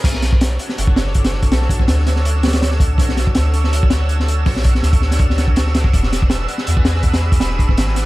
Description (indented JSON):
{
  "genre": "drum and bass, jungle",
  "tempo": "163 BPM",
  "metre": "4/4",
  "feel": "swing 53% on 16ths",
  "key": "B dorian",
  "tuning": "A4 = 442 Hz",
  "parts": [
    { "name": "lush unison pad", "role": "sustained chords", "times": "0.0-8.1 s", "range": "D4 to C#5", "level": "-26 LUFS", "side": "equal", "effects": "chorus, phaser, vintage 12-bit sampler grit" },
    { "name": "soft dub sub bass", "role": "bass", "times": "0.0-8.1 s", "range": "E1 to E2", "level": "-17 LUFS", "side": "equal", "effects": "none" },
    { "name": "crunchy breakbeat drum kit", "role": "drums", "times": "0.0-8.1 s", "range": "crash cymbal, hi-hat, kick drum, snare drum", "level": "-16 LUFS", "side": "equal", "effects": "tape echo" },
    { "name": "wind-like tuned noise texture", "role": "texture", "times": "0.6-8.1 s", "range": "E6", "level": "-29 LUFS", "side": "right 7 dB", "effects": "built-in reverb" }
  ],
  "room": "little or no reverb",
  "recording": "echo-heavy mix, vinyl crackle",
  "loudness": "-13 LUFS",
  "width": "side -18 dB against mid",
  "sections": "0.0-8.1 A section",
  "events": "drop 0.0-8.1",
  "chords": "0.0 Bm7; 5.9 E7"
}